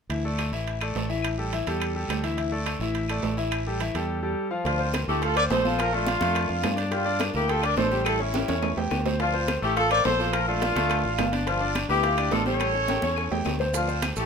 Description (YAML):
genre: latin, salsa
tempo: 211 BPM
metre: 4/4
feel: straight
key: D minor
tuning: A4 = 439 Hz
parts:
  - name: bright concert grand piano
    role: accompaniment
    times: 0.1-14.3 s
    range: E3 to G5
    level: -29 LUFS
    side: left 2 dB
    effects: none
  - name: fingered electric bass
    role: bass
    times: 0.1-14.3 s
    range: G1 to G2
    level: -29 LUFS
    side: right 1 dB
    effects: none
  - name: guiro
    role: percussion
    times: 0.1-14.3 s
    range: none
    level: -39 LUFS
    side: right 5 dB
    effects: none
  - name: timbales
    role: percussion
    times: 0.1-14.2 s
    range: none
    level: -33 LUFS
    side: right 7 dB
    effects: none
  - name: claves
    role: percussion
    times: 0.4-14.2 s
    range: none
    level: -38 LUFS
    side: left 10 dB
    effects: none
  - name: clear horn section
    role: melody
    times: 4.7-14.3 s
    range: C#4 to D5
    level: -25 LUFS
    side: left 1 dB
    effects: none
  - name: bongos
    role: percussion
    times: 4.7-14.2 s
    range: none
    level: -36 LUFS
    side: left 5 dB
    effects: none
  - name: congas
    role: percussion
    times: 4.7-14.2 s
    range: none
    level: -34 LUFS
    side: equal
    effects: none
  - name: maracas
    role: percussion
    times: 13.7-14.3 s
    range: none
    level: -37 LUFS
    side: right 9 dB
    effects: none
room: moderate studio reverb, RT60 0.9 s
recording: minimal, uncompressed stereo recording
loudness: -23 LUFS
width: side -6 dB against mid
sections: 0.1-4.7 A section; 4.7-14.3 B section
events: drum fill 8.3-9.2, 12.9-13.7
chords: 0.1 Dsus2; 1.2 A5; 2.4 Dsus2; 3.5 A5; 4.7 Dm7; 5.8 Bbmaj7; 6.9 Gm9; 8.1 A7; 9.2 Dm7; 10.3 Bbmaj7; 11.5 G9; 12.6 A7; 13.7 Dm7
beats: | 0.10 0.39 0.67 0.96 | 1.24 1.53 1.81 2.10 | 2.38 2.66 2.95 3.23 | 3.52 3.80 4.08 4.37 | 4.65 4.94 5.22 5.50 | 5.79 6.07 6.36 6.64 | 6.92 7.21 7.49 7.77 | 8.06 8.34 8.63 8.91 | 9.20 9.48 9.76 10.05 | 10.33 10.62 10.90 11.18 | 11.47 11.75 12.04 12.32 | 12.61 12.89 13.17 13.46 | 13.74 14.03